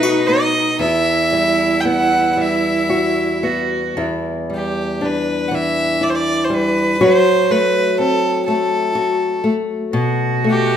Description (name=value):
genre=celtic folk, Celtic slow air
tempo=37-41 BPM (dotted quarters)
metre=6/8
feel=rubato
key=E harmonic minor, E minor from 4.0 s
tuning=A4 = 440 Hz
part: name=clear fiddle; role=melody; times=0.0-10.8 s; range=G4 to G5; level=-18 LUFS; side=equal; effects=none
part: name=clear cello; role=second line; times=0.0-4.0, 9.9-10.8 s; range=D#4 to F#4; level=-20 LUFS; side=right 4 dB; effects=none
part: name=nylon-string guitar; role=accompaniment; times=0.0-10.8 s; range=E2 to F#4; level=-18 LUFS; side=left 1 dB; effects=none
room=light reverb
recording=minimal, uncompressed stereo recording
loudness=-15 LUFS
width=side -9 dB against mid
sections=0.0-4.0 A section; 4.0-10.8 B section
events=none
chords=0.0 B7; 0.8 Emadd9; 4.0 Em7; 7.0 F#dim; 10.0 B7(no3)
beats=| 0.82 2.39 | 3.98 5.52 | 7.00 8.47 | 9.95